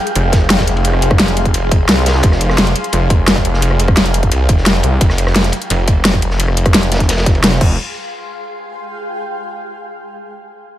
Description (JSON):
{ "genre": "dark technical drum and bass", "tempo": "173 BPM", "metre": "4/4", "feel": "straight", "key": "F minor", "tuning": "A4 = 440 Hz", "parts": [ { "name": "granular cloud pad", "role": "texture", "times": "0.0-9.1 s", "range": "Ab4 to C6", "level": "-23 LUFS", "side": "left 1 dB", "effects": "built-in reverb, sidechain pumping" }, { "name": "dubstep drum kit", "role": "drums", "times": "0.1-7.7 s", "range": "crash cymbal, hi-hat, rim click, snare drum", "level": "-15 LUFS", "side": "equal", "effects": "small room ambience" }, { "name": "snarling distorted saw bass", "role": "bass", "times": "0.2-7.8 s", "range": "F1 to C2", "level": "-15 LUFS", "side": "equal", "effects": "sidechain pumping" }, { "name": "crunchy breakbeat drum kit", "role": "drums", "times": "0.2-7.6 s", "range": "ride cymbal, snare drum", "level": "-24 LUFS", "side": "equal", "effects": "high-pass filter on cymbals, small room ambience, high-pass filter on snare, high-pass filter on room" }, { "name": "electronic kick drum", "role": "drums", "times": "0.3-7.7 s", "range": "none", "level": "-13 LUFS", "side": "equal", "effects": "small room ambience" } ], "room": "digital ambience", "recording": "none", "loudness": "-11 LUFS", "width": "side -13 dB against mid", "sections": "0.0-7.8 A section; 7.8-9.2 B section", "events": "fade-out on ambient pad 0.0-7.8", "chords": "0.0 Fmadd9; 7.6 Fm; 7.8 Fmadd9" }